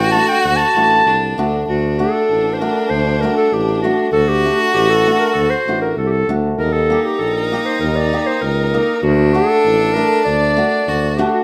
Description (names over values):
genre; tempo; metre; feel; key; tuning
klezmer; 98 BPM; 2/4; straight; D phrygian dominant; A4 = 441 Hz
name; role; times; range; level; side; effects
warm clarinet; melody; 0.0-11.4 s; F#4-21c to A5; -19 LUFS; equal; none
clear violin; second line; 0.0-11.4 s; D4 to F#4; -23 LUFS; equal; none
warm tuba; bass; 0.0-11.2 s; A1 to Eb2; -22 LUFS; equal; none
hammered dulcimer; accompaniment; 0.1-11.3 s; A3 to Bb4; -23 LUFS; equal; none
room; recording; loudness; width
moderate studio reverb, RT60 0.6 s; none; -16 LUFS; mono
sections
0.0-1.7 A section; 1.7-11.4 B section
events
clarinet solo 0.0-1.7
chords
0.0 D; 6.6 Eb; 9.0 D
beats
| 0.45 1.07 | 1.68 2.30 | 2.92 3.53 | 4.14 4.76 | 5.37 5.99 | 6.60 7.21 | 7.82 8.43 | 9.04 9.66 | 10.27 10.88